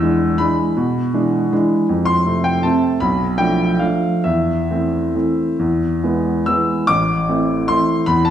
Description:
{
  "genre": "classical, piano waltz",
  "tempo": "132-170 BPM",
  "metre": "3/4",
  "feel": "rubato",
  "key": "A minor",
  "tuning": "A4 = 440 Hz",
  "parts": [
    { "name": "clear baby grand piano", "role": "solo", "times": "0.0-8.3 s", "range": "A1 to E6", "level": "-15 LUFS", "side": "equal", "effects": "none" }
  ],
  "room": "wet scoring stage reverb, RT60 1.4 s",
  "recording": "recorded in a church or concert hall",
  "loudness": "-15 LUFS",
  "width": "side -10 dB against mid",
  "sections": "0.0-6.9 A section; 6.9-8.3 B section",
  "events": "none",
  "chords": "0.0 E7; 1.9 F; 3.0 Bm7b5; 4.2 Am/E; 5.6 E; 6.9 Am",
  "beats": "0.03 0.40 | 0.77 1.13 1.52 | 1.89 2.26 2.64 | 3.01 3.39 3.80 | 4.24 4.69 5.14 | 5.59 6.02 6.46 | 6.89 7.29 7.69 | 8.08"
}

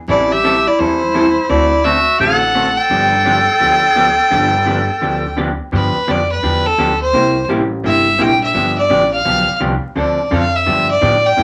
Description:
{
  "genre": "country",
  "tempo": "170 BPM",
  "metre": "4/4",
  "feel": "swing 65% on 8ths",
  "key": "G mixolydian",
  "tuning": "A4 = 440 Hz",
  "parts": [
    { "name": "clear fiddle", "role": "melody", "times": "0.1-11.4 s", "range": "A4 to G5", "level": "-17 LUFS", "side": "equal", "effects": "none" },
    { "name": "clear clarinet", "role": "second line", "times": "0.1-5.4 s", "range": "E4 to A4", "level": "-19 LUFS", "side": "equal", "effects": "none" },
    { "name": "vintage hollow-body jazz guitar", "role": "accompaniment", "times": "0.1-11.4 s", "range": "C3 to A4", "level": "-21 LUFS", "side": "equal", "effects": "none" },
    { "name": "upright bass", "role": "bass", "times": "0.1-11.4 s", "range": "G1 to A2", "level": "-24 LUFS", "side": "equal", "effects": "none" }
  ],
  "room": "wet club reverb, RT60 0.5 s",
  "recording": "vinyl crackle",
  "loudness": "-14 LUFS",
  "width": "mono",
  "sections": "0.0-5.7 A section; 5.7-11.4 B section",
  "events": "fiddle solo 5.7-11.4",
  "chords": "0.1 Am7; 1.5 D9; 2.9 G9; 7.1 C7; 8.5 G9; 10.0 Dm7; 10.7 G9",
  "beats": "| 0.08 0.44 0.79 1.14 | 1.49 1.84 2.20 2.55 | 2.90 3.25 3.61 3.96 | 4.31 4.67 5.02 5.37 | 5.72 6.08 6.43 6.78 | 7.14 7.49 7.84 8.20 | 8.55 8.90 9.25 9.61 | 9.96 10.31 10.67 11.02 | 11.37"
}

